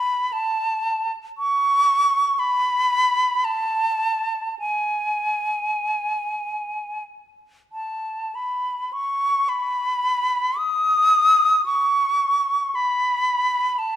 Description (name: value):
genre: classical, free, expressive piece for unaccompanied flute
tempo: free time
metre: none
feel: none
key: unclear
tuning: A4 = 443 Hz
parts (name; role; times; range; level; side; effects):
- bright silver concert flute; solo; 0.0-14.0 s; G#5 to D#6; -19 LUFS; equal; none
room: moderate recital hall reverb, RT60 1.6 s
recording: none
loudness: -19 LUFS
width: side -11 dB against mid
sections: 0.0-14.0 A section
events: none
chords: none